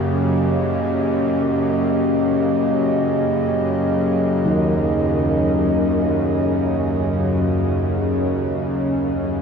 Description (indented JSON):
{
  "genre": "dark ambient drone",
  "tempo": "free time",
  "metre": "none",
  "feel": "none",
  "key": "unclear",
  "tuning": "A4 = 438 Hz",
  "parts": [
    { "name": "dark analog pad", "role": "sustained chords", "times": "0.0-9.4 s", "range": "A#3 to D#5", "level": "-23 LUFS", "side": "right 2 dB", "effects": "chorus, shimmer reverb" },
    { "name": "bowed-like drone", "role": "drone", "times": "0.0-9.4 s", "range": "F#2 to C#3", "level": "-19 LUFS", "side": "left 1 dB", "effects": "built-in reverb" },
    { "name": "carillon bells", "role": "arpeggios", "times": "4.5-9.4 s", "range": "D#3", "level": "-23 LUFS", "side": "equal", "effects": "tape echo, shimmer reverb" }
  ],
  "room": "wet cathedral reverb, RT60 5.4 s",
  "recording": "none",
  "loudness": "-17 LUFS",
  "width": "side -6 dB against mid",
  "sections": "0.0-9.4 A section",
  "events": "fade-out on analog synth pad 0.0-9.4",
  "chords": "0.0 D#"
}